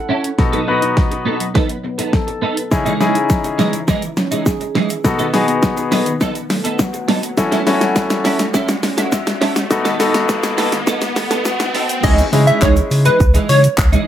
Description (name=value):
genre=dance-pop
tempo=103 BPM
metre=4/4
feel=straight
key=C# minor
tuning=A4 = 441 Hz
part: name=twelve-string electric guitar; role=riff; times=0.1-14.1 s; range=E3 to A4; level=-20 LUFS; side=right 4 dB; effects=ensemble chorus
part: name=pop drum kit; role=drums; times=0.2-14.1 s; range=crash cymbal, handclaps, hi-hat, kick drum, shaker, snare drum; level=-17 LUFS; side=equal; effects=none
part: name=warm concert grand piano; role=accompaniment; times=0.4-13.1 s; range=G#3 to B4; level=-18 LUFS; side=left 3 dB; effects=sidechain pumping, plate reverb
part: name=handpan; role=arpeggios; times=0.4-11.6 s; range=B2 to E5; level=-25 LUFS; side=left 2 dB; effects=sidechain pumping, plate reverb, tape echo
part: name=egg shaker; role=percussion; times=2.7-14.1 s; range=none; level=-35 LUFS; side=left 3 dB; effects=none
part: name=riser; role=sound effects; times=6.4-12.0 s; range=none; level=-27 LUFS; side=equal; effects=none
part: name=plucky unison lead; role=melody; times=12.0-13.6 s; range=B4 to E5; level=-16 LUFS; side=equal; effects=sidechain pumping, plate reverb
part: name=warm sub bass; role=bass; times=12.0-14.0 s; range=C#2 to C#3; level=-14 LUFS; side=equal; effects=sidechain pumping
room=moderate studio reverb, RT60 0.6 s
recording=high-pass filter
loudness=-14 LUFS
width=side -10 dB against mid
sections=0.0-12.0 A section; 12.0-14.1 B section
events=build-up 0.0-12.0; drum fill 0.0-12.0; filter sweep 0.0-12.0; riser 6.4-12.0; drop 12.0-14.1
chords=0.4 B7; 2.7 C#madd9; 5.0 B7; 7.4 F#m7; 9.7 B7; 12.0 C#madd9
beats=| 0.39 0.97 1.55 2.13 | 2.72 3.30 3.88 4.46 | 5.05 5.63 6.21 6.79 | 7.38 7.96 8.54 9.12 | 9.71 10.29 10.87 11.45 | 12.04 12.62 13.20 13.78